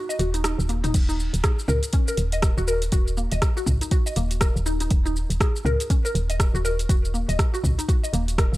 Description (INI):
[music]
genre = afro house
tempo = 121 BPM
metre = 4/4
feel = swing 59% on 16ths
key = Eb minor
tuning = A4 = 440 Hz
[part]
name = mallet-like synth pluck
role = arpeggios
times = 0.0-8.5 s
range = Bb3 to Eb5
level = -29 LUFS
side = left 1 dB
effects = ensemble chorus, sidechain pumping, tape echo
[part]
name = deep house drum kit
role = drums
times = 0.1-8.6 s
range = crash cymbal, hi-hat, rim click, shaker, toms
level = -29 LUFS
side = equal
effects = small room ambience
[part]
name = woody FM bass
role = bass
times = 0.2-8.6 s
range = Eb1 to Db2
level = -24 LUFS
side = equal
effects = sidechain pumping
[part]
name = electronic kick drum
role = drums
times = 0.9-8.5 s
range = none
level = -21 LUFS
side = equal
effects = small room ambience
[sound]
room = digital ambience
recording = dry, gritty hardware recording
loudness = -20 LUFS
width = side -18 dB against mid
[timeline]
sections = 0.9-8.6 A section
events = break 0.0-0.9; drop 0.9-8.6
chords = 0.0 Ebm; 0.9 Eb5